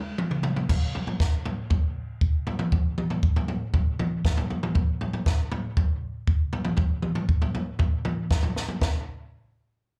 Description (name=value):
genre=rock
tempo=118 BPM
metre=4/4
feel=straight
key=none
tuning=none
part: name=compact cocktail drum kit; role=drums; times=0.2-8.9 s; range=crash cymbal, kick drum, snare drum, toms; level=-26 LUFS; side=equal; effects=none
room=light reverb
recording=live gig heard through the venue's PA, club reverb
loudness=-26 LUFS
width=mono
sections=0.7-8.8 A section; 8.8-10.0 B section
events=drum fill 0.0-0.7, 8.6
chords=none